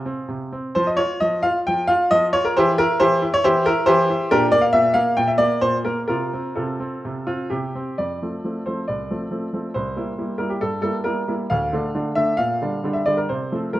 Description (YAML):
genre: classical-period piano sonatina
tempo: 120-141 BPM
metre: 4/4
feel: rubato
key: F major from 4.3 s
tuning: A4 = 444 Hz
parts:
  - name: clear baby grand piano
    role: solo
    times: 0.0-13.8 s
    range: C2 to G5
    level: -18 LUFS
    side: equal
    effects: none
room: moderate recital hall reverb, RT60 1.6 s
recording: worn, warbling old tape, cassette tape, warbly pitch drift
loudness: -18 LUFS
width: side -15 dB against mid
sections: 0.0-8.0 A section; 8.0-13.8 B section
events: none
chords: 0.0 Fm/C; 0.8 N.C.; 2.6 C/E; 4.3 Gm/Bb; 6.1 F/C; 8.0 F; 9.8 C7; 11.5 Dm; 12.4 Gm7/Bb; 13.3 F/C